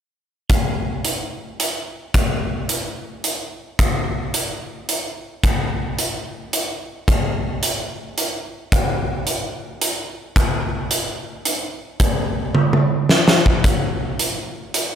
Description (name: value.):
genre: rock.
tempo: 110 BPM.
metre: 3/4.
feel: straight.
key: none.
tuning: none.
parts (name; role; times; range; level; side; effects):
big rock drum kit; drums; 0.5-14.9 s; hi-hat, kick drum, snare drum, toms; -18 LUFS; equal; none.
room: little or no reverb.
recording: none.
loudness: -19 LUFS.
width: side -9 dB against mid.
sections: 0.5-13.6 A section; 13.6-15.0 B section.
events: drum fill 12.6-13.6.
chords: none.